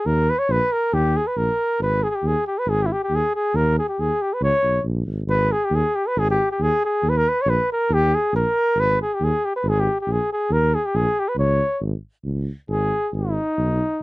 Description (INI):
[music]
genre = balkan folk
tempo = 138 BPM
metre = 2/4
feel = straight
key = unclear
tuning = A4 = 441 Hz
[part]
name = mellow cornet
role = melody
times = 0.0-14.0 s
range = D#4 to C#5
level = -20 LUFS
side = equal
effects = none
[part]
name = dark tuba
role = bass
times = 0.1-13.8 s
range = G#1 to D#2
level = -22 LUFS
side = equal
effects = none
[sound]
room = little or no reverb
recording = dry, close 1970s-style studio recording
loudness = -19 LUFS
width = side -20 dB against mid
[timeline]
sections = 0.0-5.3 A section; 5.3-12.3 A section; 12.3-14.0 B section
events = cornet solo 12.3-14.0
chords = 0.1 D#5; 1.8 G#5; 3.5 D#add11; 4.4 C#5; 5.3 G#5; 7.0 D#5; 8.8 G#5; 10.5 D#5; 11.4 C#5; 13.1 G#m